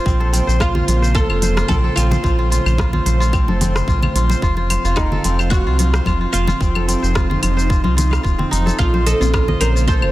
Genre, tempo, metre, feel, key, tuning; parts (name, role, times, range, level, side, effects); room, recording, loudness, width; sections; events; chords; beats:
organic downtempo; 110 BPM; 4/4; straight; A4 = 439 Hz
airy breathy pad; sustained chords; 0.0-10.1 s; Db3 to F5; -26 LUFS; right 1 dB; chorus, vintage 12-bit sampler grit, sidechain pumping
kora; arpeggios; 0.0-10.1 s; C4 to F5; -23 LUFS; left 1 dB; tape echo
round analog bass; bass; 0.1-10.1 s; Eb1 to C2; -17 LUFS; equal; sidechain pumping
electronic kick drum; drums; 0.1-10.0 s; -18 LUFS; equal
organic electronic drum kit; drums; 0.1-10.1 s; claves, hi-hat, rim click, shaker; -26 LUFS; left 1 dB; soft clipping on snare
congas; percussion; 0.2-9.7 s; -24 LUFS; left 2 dB
oud; melody; 0.6-10.1 s; Eb4 to C5; -24 LUFS; right 1 dB; digital delay
deep mellow chord stab; accompaniment; 8.8-10.1 s; Bb3 to C5; -27 LUFS; left 3 dB; lush chorus, sidechain pumping, tape echo
digital ambience; dense, heavily limited modern master; -14 LUFS; side -16 dB against mid
0.0-8.8 A section; 8.8-10.1 B section
0.1 Bbmadd9; 4.4 F7; 8.8 Bbmadd9
| 0.06 0.61 1.15 1.70 | 2.25 2.79 3.34 3.88 | 4.43 4.97 5.52 6.06 | 6.61 7.15 7.70 8.24 | 8.79 9.34 9.88